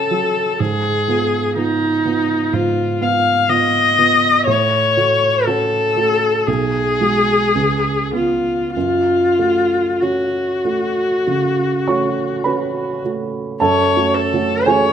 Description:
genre	classical, romantic duo for viola and grand piano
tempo	47-63 BPM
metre	4/4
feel	rubato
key	F# minor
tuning	A4 = 441 Hz
part	rich viola	melody	0.0-14.9 s	D#4 to F5	-16 LUFS	left 3 dB	none
part	warm grand piano	accompaniment	0.0-14.9 s	B1 to C#6	-19 LUFS	right 5 dB	none
room	moderate recital hall reverb, RT60 1.5 s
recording	close, detailed microphones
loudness	-14 LUFS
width	side -8 dB against mid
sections	0.0-13.6 A section; 13.6-14.9 A section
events	none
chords	0.0 F#m; 0.6 Fdim/Ab; 4.5 F#m/A; 6.5 G#m7/B; 7.5 C#7; 8.7 F#m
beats	| 0.59 1.56 2.53 3.48 | 4.47 5.46 6.48 7.55 | 8.75 9.99 11.25 12.44 | 13.60 14.66

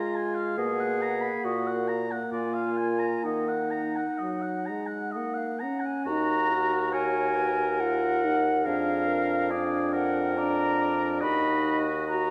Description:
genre	classical, slow romantic movement for wind quintet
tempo	63-72 BPM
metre	3/4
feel	rubato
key	Eb minor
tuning	A4 = 437 Hz
part	concert flute	melody	0.0-12.3 s	F5 to Cb6	-33 LUFS	equal	none
part	warm oboe	second line	0.0-12.3 s	Gb4 to B5	-36 LUFS	equal	none
part	bright clarinet	accompaniment	0.0-12.3 s	Eb4 to Eb5	-35 LUFS	equal	none
part	warm French horn	accompaniment	0.0-12.3 s	Gb3 to Gb4	-34 LUFS	equal	none
part	mellow bassoon	bass	0.6-12.3 s	Eb2 to Eb3	-33 LUFS	equal	none
room	moderate concert hall reverb, RT60 1.7 s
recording	dark, warm production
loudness	-27 LUFS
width	mono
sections	0.0-6.1 A section; 6.1-12.3 A section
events	none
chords	0.0 Bb7(no3); 0.6 Bmaj7; 1.4 Ebm/Bb; 2.3 Bb7; 3.3 Ebm; 8.7 Bb7/F; 11.2 Ebm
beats	| 0.58 1.45 2.33 | 3.25 4.20 5.14 | 6.06 6.94 7.80 | 8.66 9.52 10.37 | 11.22 12.07

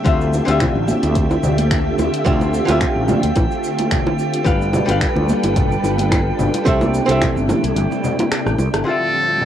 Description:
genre	sunset chillout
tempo	109 BPM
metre	4/4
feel	swing 54% on 16ths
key	D dorian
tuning	A4 = 443 Hz
part	archtop guitar, miked and amplified	accompaniment	0.0-9.4 s	D3 to F5	-22 LUFS	moving between left 5 dB and right 3 dB	auto-pan, cassette tape, analog delay, plate reverb
part	soft string machine	sustained chords	0.0-9.4 s	D2 to E5	-22 LUFS	equal	ensemble chorus, cassette tape
part	drifting glass-harmonics texture	texture	0.0-9.4 s	G5	-28 LUFS	right 2 dB	chorus, built-in reverb, cassette tape
part	fretless electric bass	bass	0.1-8.8 s	G1 to D2	-20 LUFS	equal	none
part	deep house drum kit	drums	0.1-9.4 s	cabasa, congas, finger snaps, hi-hat, rim click	-24 LUFS	left 1 dB	low-pass filter on hats, low-pass filter on perc, low-pass filter on snare, low-pass filter on room
part	electronic kick drum	drums	0.1-7.3 s	none	-20 LUFS	equal	none
part	bongos and congas	percussion	0.3-8.7 s	none	-23 LUFS	right 1 dB	none
part	trumpet with metal mute	melody	8.9-9.4 s	A4	-16 LUFS	equal	cassette tape
room	moderate studio ambience, RT60 0.5 s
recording	home recording on cassette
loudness	-15 LUFS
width	side -10 dB against mid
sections	0.0-8.9 A section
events	break 7.8-8.9; drum fill 8.3-8.9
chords	0.1 Dm11; 4.5 G7; 6.7 C6; 8.9 Dm11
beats	| 0.06 0.61 1.16 1.71 | 2.26 2.81 3.36 3.91 | 4.46 5.01 5.56 6.11 | 6.66 7.21 7.76 8.31 | 8.86 9.41

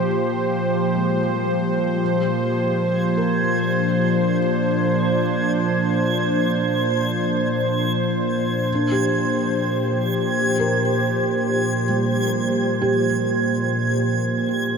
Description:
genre	ambient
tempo	54 BPM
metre	3/4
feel	straight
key	unclear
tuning	A4 = 442 Hz
part	warm analog pad	sustained chords	0.0-14.8 s	Bb2 to C5	-19 LUFS	equal	chorus
part	felt-muted upright piano	arpeggios	0.0-14.8 s	G3 to C5	-28 LUFS	left 1 dB	ping-pong delay
part	backwards swelling texture	texture	3.0-14.8 s	Ab6	-27 LUFS	right 2 dB	built-in reverb
room	wet huge ambient reverb, RT60 7.2 s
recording	in a vast, echoing space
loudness	-18 LUFS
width	side -5 dB against mid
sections	0.0-14.8 A section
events	fade-in on felt piano 0.0-14.8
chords	0.0 Fmadd9/Bb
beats	0.90 | 2.01 3.12 4.23 | 5.34 6.46 7.57 | 8.68 9.79 10.90 | 12.01 13.12 14.23

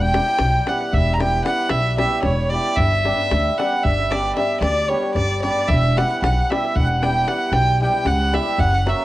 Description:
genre	balkan folk, Balkan wedding band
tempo	227 BPM (eighths)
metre	11/8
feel	straight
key	unclear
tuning	A4 = 441 Hz
part	clear violin	melody	0.0-9.0 s	C#5 to A#5	-22 LUFS	equal	plate reverb
part	accordion	second line	0.0-9.0 s	C#5 to A#5	-26 LUFS	right 2 dB	none
part	upright bass	bass	0.0-8.9 s	E1 to D2	-21 LUFS	equal	none
part	davul	percussion	0.0-9.0 s	none	-25 LUFS	left 1 dB	none
part	hammered dulcimer	accompaniment	0.1-9.0 s	F#3 to G4	-24 LUFS	equal	none
room	moderate small room reverb, RT60 0.5 s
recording	worn, warbling old tape, cassette tape, warbly pitch drift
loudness	-17 LUFS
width	side -16 dB against mid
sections	0.0-9.0 A section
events	none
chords	0.0 Em; 2.8 G; 5.7 Em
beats	0.13 0.39 0.66 0.92 1.19 1.45 1.72 1.98 2.25 2.51 | 2.78 3.04 3.31 3.57 3.83 4.10 4.36 4.63 4.89 5.16 5.42 | 5.69 5.95 6.21 6.48 6.74 7.01 7.27 7.54 7.80 8.06 8.33 | 8.59 8.85

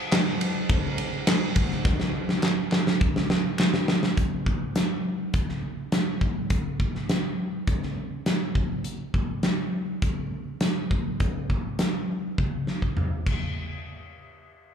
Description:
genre	rock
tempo	102 BPM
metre	4/4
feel	straight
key	none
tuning	none
part	big rock drum kit	drums	0.1-13.4 s	crash cymbal, hi-hat, kick drum, ride cymbal, snare drum, toms	-24 LUFS	equal	none
part	group handclap	percussion	0.1-3.7 s	none	-35 LUFS	left 1 dB	none
room	light reverb, small room ambience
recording	live gig heard through the venue's PA, club reverb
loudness	-24 LUFS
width	side -8 dB against mid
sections	0.0-4.2 A section; 4.2-13.6 B section; 13.6-14.7 C section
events	drum fill 1.8-4.2, 12.4-13.6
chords	none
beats	0.12 0.69 1.27 | 1.85 2.43 3.01 3.59 | 4.17 4.75 5.33 5.92 | 6.50 7.09 7.67 8.26 | 8.85 9.44 10.03 10.62 | 11.20 11.79 12.38 12.97

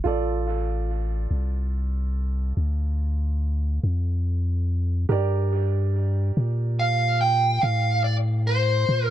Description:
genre	slow blues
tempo	48 BPM (dotted quarters)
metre	12/8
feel	straight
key	D minor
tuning	A4 = 440 Hz
part	warm grand piano	accompaniment	0.0-9.1 s	F4 to D5	-30 LUFS	right 6 dB	analog delay
part	punchy sub bass	bass	0.1-9.1 s	A1 to Bb2	-23 LUFS	equal	none
part	smooth overdriven lead guitar	melody	6.8-9.1 s	C5 to G5	-22 LUFS	right 1 dB	none
room	light reverb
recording	echo-heavy mix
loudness	-21 LUFS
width	side -12 dB against mid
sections	0.0-9.1 A section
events	none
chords	0.0 Dm; 5.1 Gm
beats	| 0.05 1.31 2.57 3.83 | 5.10 6.36 7.62 8.89

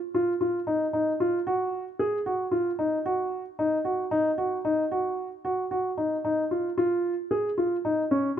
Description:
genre	contemporary instrumental, contemporary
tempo	113 BPM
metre	5/4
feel	straight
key	unclear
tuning	A4 = 439 Hz
part	dark baby grand piano	solo	0.1-8.4 s	Db4 to Ab4	-25 LUFS	equal	none
room	light reverb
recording	close, detailed microphones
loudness	-25 LUFS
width	side -9 dB against mid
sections	0.0-8.4 A section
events	none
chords	none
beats	0.41 0.94 | 1.47 2.00 2.53 3.06 3.59 | 4.12 4.66 5.19 5.72 6.25 | 6.78 7.31 7.84 8.37

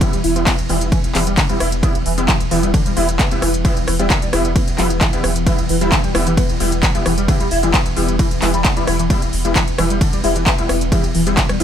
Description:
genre	driving peak-time techno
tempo	132 BPM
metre	4/4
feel	straight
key	E minor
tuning	A4 = 445 Hz
part	overdriven synth lead	riff	0.0-11.6 s	D3 to E4	-22 LUFS	equal	tube saturation, ensemble chorus, sidechain pumping, ping-pong delay
part	rave stab	stabs	0.0-11.6 s	G3 to E4	-22 LUFS	left 1 dB	chorus, built-in reverb, sidechain pumping, tape echo
part	deep dark ambient pad	drone	0.0-11.6 s	E3 to B3	-26 LUFS	left 1 dB	chorus, built-in reverb, sidechain pumping
part	electronic kick drum	drums	0.0-11.5 s	none	-17 LUFS	equal	overdrive
part	techno drum kit	drums	0.0-11.6 s	handclaps, hi-hat, ride cymbal, rim click	-21 LUFS	equal	overdrive, sidechain pumping on hats, sidechain pumping on cymbals
part	warm sub bass	bass	0.2-11.6 s	E1	-21 LUFS	equal	overdrive, sidechain pumping, low-pass filter
room	little or no reverb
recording	none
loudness	-14 LUFS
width	side -9 dB against mid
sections	0.0-11.6 A section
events	none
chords	0.0 Em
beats	| 0.01 0.47 0.92 1.38 | 1.83 2.28 2.74 3.19 | 3.65 4.10 4.56 5.01 | 5.47 5.92 6.38 6.83 | 7.28 7.74 8.19 8.65 | 9.10 9.56 10.01 10.47 | 10.92 11.38

